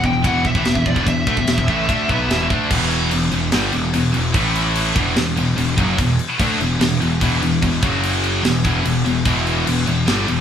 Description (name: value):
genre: heavy metal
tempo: 146 BPM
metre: 4/4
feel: straight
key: E minor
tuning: A4 = 440 Hz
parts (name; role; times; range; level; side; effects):
- high-gain lead guitar; melody; 0.0-2.5 s; D5 to G5; -22 LUFS; left 1 dB; distortion
- heavy high-gain guitar; riff; 0.0-10.4 s; E2 to D4; -24 LUFS; right 1 dB; distortion
- high-gain distorted guitar; riff; 0.0-10.4 s; E2 to D4; -24 LUFS; left 7 dB; distortion
- high-gain distorted guitar; riff; 0.0-10.4 s; E2 to D4; -24 LUFS; right 5 dB; distortion
- fuzz picked electric bass; bass; 0.0-10.4 s; E1 to D2; -21 LUFS; equal; overdrive
- tight metal drum kit; drums; 0.0-10.4 s; crash cymbal, kick drum, ride cymbal, snare drum; -21 LUFS; equal; none
room: moderate studio reverb, RT60 0.7 s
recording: band playing live in one room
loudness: -15 LUFS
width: side -8 dB against mid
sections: 0.0-2.7 A section; 2.7-10.4 B section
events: half time 2.7-10.4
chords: 0.0 E5; 2.7 Em; 4.3 A5; 5.0 E5; 7.8 F#5; 8.4 Em